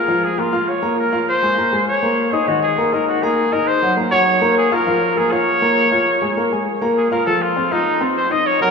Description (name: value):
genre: jazz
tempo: 201 BPM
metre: 4/4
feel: straight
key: Bb minor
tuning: A4 = 438 Hz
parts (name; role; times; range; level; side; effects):
- warm trumpet; melody; 0.0-8.7 s; Eb4 to Eb5; -17 LUFS; equal; none
- warm grand piano; accompaniment; 0.0-8.7 s; Eb3 to F6; -18 LUFS; left 2 dB; none
room: wet cathedral reverb, RT60 5.5 s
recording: in a vast, echoing space, small room ambience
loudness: -15 LUFS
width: side -5 dB against mid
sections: 0.0-8.7 A section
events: none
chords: 0.0 Bbm7; 2.5 Ebm; 4.9 Bbm7; 7.3 F5